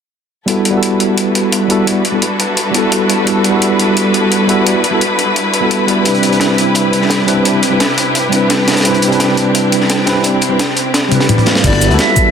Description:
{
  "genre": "liquid drum and bass",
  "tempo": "172 BPM",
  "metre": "4/4",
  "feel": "straight",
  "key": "unclear",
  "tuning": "A4 = 441 Hz",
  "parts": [
    { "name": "tine electric piano", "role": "accompaniment", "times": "0.5-12.3 s", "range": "G3 to D5", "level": "-14 LUFS", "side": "right 1 dB", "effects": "medium stereo tremolo, low-pass filter, digital delay" },
    { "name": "rich studio string section", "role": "sustained chords", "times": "0.5-12.3 s", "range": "C3 to B4", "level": "-16 LUFS", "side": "left 1 dB", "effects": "sidechain pumping" },
    { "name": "breakbeat sampler-style drum kit", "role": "drums", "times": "0.5-12.2 s", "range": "crash cymbal, hi-hat, shaker, snare drum, toms", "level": "-17 LUFS", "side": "left 1 dB", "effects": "overdrive" },
    { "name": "crunchy breakbeat drum kit", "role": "drums", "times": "6.1-12.3 s", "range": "hi-hat, snare drum", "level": "-18 LUFS", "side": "equal", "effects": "high-pass filter on hats, high-pass filter on snare, high-pass filter on room" },
    { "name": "swell", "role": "sound effects", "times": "11.0-11.6 s", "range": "none", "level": "-22 LUFS", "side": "right 2 dB", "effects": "none" },
    { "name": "silver concert flute", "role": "melody", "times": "11.6-12.3 s", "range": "D5 to E5", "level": "-14 LUFS", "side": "equal", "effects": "none" },
    { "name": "smooth synth bass", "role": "bass", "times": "11.6-12.0 s", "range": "G1 to D2", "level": "-13 LUFS", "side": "equal", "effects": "tube saturation" },
    { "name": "electronic kick drum", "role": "drums", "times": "11.6-12.2 s", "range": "none", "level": "-15 LUFS", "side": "equal", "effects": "overdrive" }
  ],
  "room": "moderate huge ambient reverb, RT60 5.0 s",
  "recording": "dense, heavily limited modern master",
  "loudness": "-10 LUFS",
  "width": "side -7 dB against mid",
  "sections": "0.5-11.6 A section",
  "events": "filter sweep on tine electric piano 0.5-11.6; swell 11.0-11.6; drum fill 11.1-11.6",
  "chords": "0.5 Gmaj13; 6.1 Cmaj9; 11.6 Gmaj13",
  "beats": "| 0.48 0.83 1.18 1.52 | 1.87 2.22 2.57 2.92 | 3.27 3.62 3.97 4.32 | 4.67 5.01 5.36 5.71 | 6.06 6.41 6.76 7.11 | 7.46 7.80 8.15 8.50 | 8.85 9.20 9.55 9.90 | 10.25 10.60 10.94 11.29 | 11.64 11.99"
}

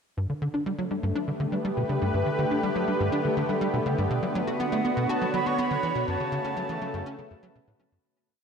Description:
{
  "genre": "ambient, sequencer-driven space music",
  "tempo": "122 BPM",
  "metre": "4/4",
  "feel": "straight",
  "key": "G lydian",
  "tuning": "A4 = 441 Hz",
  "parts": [
    { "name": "lush unison pad", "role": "sustained chords", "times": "0.2-8.0 s", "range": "C#3 to C#5", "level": "-28 LUFS", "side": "equal", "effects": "chorus" },
    { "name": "tight sequencer bass", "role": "riff", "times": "0.2-8.0 s", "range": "F#2 to F#4", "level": "-29 LUFS", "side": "equal", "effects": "ensemble chorus, tape echo" },
    { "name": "bubbling stepped-filter texture", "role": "texture", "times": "0.9-8.1 s", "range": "B3 to B4", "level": "-43 LUFS", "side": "equal", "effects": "chorus, built-in reverb" },
    { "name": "silver concert flute", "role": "melody", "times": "4.6-7.5 s", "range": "F#5 to C#6", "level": "-31 LUFS", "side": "right 3 dB", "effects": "tape echo" }
  ],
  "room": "wet lush hall reverb, RT60 2.7 s",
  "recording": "dreamy mix soaked in reverb",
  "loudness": "-25 LUFS",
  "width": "side -6 dB against mid",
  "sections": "0.2-8.0 A section",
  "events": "fade-in on synth texture 0.2-8.0; fade-out 5.4-8.0",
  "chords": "0.2 Gadd9; 4.1 Bmadd9; 6.1 F#m",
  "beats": "| 0.17 0.66 1.16 1.65 | 2.14 2.63 3.12 3.62 | 4.11 4.60 5.09 5.58 | 6.07 6.57 7.06 7.55"
}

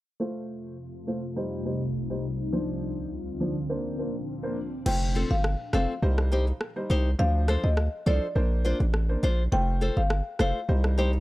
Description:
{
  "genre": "dancehall",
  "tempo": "103 BPM",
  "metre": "4/4",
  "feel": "straight",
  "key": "unclear",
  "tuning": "A4 = 440 Hz",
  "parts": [
    { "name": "warm baby grand piano", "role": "accompaniment", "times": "0.2-11.1 s", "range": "F3 to C5", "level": "-32 LUFS", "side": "right 1 dB", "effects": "none" },
    { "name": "ethereal airy pad", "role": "sustained chords", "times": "0.7-4.8 s", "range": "C2 to F4", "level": "-33 LUFS", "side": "left 1 dB", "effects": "ensemble chorus, built-in reverb" },
    { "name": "marimba with medium mallets", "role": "melody", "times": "4.9-10.6 s", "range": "D5 to G5", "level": "-32 LUFS", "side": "left 2 dB", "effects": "none" },
    { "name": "hard-hitting 808-style bass", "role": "bass", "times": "4.9-11.2 s", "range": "F1 to D2", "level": "-24 LUFS", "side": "equal", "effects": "none" },
    { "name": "afro-pop drum kit", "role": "drums", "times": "4.9-11.0 s", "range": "crash cymbal, rim click", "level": "-33 LUFS", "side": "equal", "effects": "none" },
    { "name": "nylon-string guitar", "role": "arpeggios", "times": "5.2-11.2 s", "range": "C4 to C5", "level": "-30 LUFS", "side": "left 2 dB", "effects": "none" }
  ],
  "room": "small room ambience",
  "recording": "dry, gritty hardware recording, low-pass filter",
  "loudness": "-24 LUFS",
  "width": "side -17 dB against mid",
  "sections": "0.2-4.9 A section; 4.9-11.2 B section",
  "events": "filter sweep 0.2-4.9; kick muted 4.9-11.2",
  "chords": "0.2 F; 1.4 Cm; 2.5 Dm7; 3.7 Bbadd9; 4.9 F; 6.0 Cm; 7.2 Dm7; 8.4 Bbadd9; 9.5 F; 10.7 Cm",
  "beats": "| 0.20 0.78 1.37 1.95 | 2.53 3.11 3.70 4.28 | 4.86 5.44 6.03 6.61 | 7.19 7.77 8.36 8.94 | 9.52 10.10 10.69"
}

